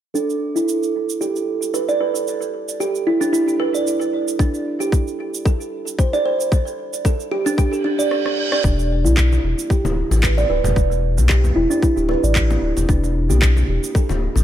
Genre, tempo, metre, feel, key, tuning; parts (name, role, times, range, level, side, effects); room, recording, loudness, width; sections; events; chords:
organic downtempo; 113 BPM; 4/4; swing 54% on 16ths; E minor; A4 = 440 Hz
kalimba; arpeggios; 0.1-14.1 s; D4 to D5; -20 LUFS; right 2 dB; vintage 12-bit sampler grit, low-pass filter, tape echo
bronze singing bowl; texture; 0.1-8.1 s; A4; -30 LUFS; right 8 dB; stereo widening
electronic cabasa, rim click and handclaps; drums; 0.2-14.4 s; -26 LUFS; right 2 dB; overdrive
electronic kick drum; drums; 4.4-14.1 s; -18 LUFS; left 1 dB; overdrive
reverse cymbal; sound effects; 7.8-8.6 s; -27 LUFS; right 5 dB
round analog bass; bass; 8.6-14.4 s; D1 to B1; -18 LUFS; left 1 dB
congas; percussion; 9.0-14.4 s; -28 LUFS; left 3 dB; analog delay
moderate plate reverb, RT60 1.9 s; echo-heavy mix; -16 LUFS; side -11 dB against mid
0.1-8.6 A section; 8.6-14.4 B section
filter sweep on kalimba 0.1-8.6; reverse cymbal 7.8-8.6; drum fill 8.1-8.6
0.1 N.C.; 4.4 D5; 8.6 E7(no3)